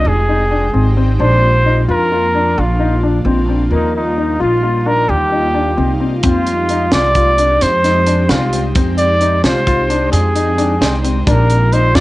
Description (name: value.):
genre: progressive instrumental, band music in an uneven meter.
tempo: 262 BPM (eighths).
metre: 11/8.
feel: straight.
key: F dorian.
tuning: A4 = 441 Hz.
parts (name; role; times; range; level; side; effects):
breathy trumpet; melody; 0.0-12.0 s; Eb4 to D5; -15 LUFS; equal; cassette tape.
warm grand piano; arpeggios; 0.0-12.0 s; Bb3 to F4; -20 LUFS; left 4 dB; cassette tape, tape echo.
upright bass; bass; 0.0-12.0 s; F1 to F2; -16 LUFS; right 1 dB; none.
tight funk drum kit; drums; 6.2-12.0 s; hi-hat, kick drum, snare drum; -18 LUFS; right 1 dB; cassette tape.
room: moderate spring reverb, RT60 1.2 s, studio reverb.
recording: home recording on cassette, nothing above 10.8 kHz.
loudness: -11 LUFS.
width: side -18 dB against mid.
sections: 0.0-12.0 A section.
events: none.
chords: 0.0 Fm7; 1.2 Bb; 3.7 Ebadd9; 6.2 Fm7; 11.3 Bb.